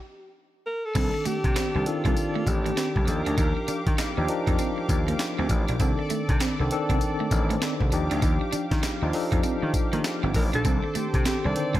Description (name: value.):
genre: R&B, new jack swing.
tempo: 99 BPM.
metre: 4/4.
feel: swing 62% on 16ths.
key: C dorian.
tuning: A4 = 436 Hz.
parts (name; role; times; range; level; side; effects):
mellow alto saxophone; melody; 0.0-4.2, 10.4-11.8 s; F4 to D5; -30 LUFS; equal; none.
brassy analog pad; sustained chords; 0.9-11.8 s; G4 to D6; -35 LUFS; left 1 dB; chorus, tremolo.
tine electric piano; accompaniment; 1.0-11.8 s; D3 to Eb5; -29 LUFS; left 2 dB; medium stereo tremolo.
electric guitar at the edge of break-up; riff; 1.0-11.8 s; A3 to Eb4; -33 LUFS; right 6 dB; wide subtle chorus.
gritty slap bass; bass; 1.0-11.8 s; G1 to Eb3; -27 LUFS; equal; overdrive.
breakbeat sampler-style drum kit; drums; 1.0-11.8 s; crash cymbal, handclaps, hi-hat, kick drum, snare drum, tambourine; -27 LUFS; equal; gated reverb.
room: digital ambience.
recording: none.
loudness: -23 LUFS.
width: side -14 dB against mid.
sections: 1.0-11.8 A section.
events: stop 0.0-1.0.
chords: 0.0 Eb (rootless); 1.0 Cm69; 3.1 Ebmaj9; 5.8 Cm69; 7.9 Ebmaj9; 10.6 Cm69.